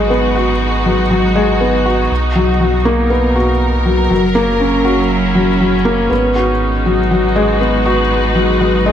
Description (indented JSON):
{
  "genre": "piano and strings electronica",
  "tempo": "120 BPM",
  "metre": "4/4",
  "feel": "straight",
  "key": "G# minor",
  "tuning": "A4 = 440 Hz",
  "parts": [
    { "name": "rich studio string section", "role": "sustained chords", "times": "0.0-8.9 s", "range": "B2 to B4", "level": "-18 LUFS", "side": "equal", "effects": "none" },
    { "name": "felt-muted upright piano", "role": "riff", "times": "0.0-8.9 s", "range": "F#3 to F#4", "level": "-14 LUFS", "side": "left 1 dB", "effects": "digital delay" },
    { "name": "round analog bass", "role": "bass", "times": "0.0-8.9 s", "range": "F#1 to B1", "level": "-18 LUFS", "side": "right 1 dB", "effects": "none" }
  ],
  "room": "moderate echo chamber reverb, RT60 1.3 s, small room ambience",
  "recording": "none",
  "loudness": "-11 LUFS",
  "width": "side -9 dB against mid",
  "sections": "0.0-8.9 A section",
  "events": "none",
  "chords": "0.0 G#m7; 2.1 Bmaj7; 4.1 F#7; 6.1 G#m7",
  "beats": "| 0.11 0.61 1.11 1.61 | 2.11 2.61 3.11 3.61 | 4.11 4.61 5.11 5.61 | 6.11 6.61 7.11 7.61 | 8.11 8.61"
}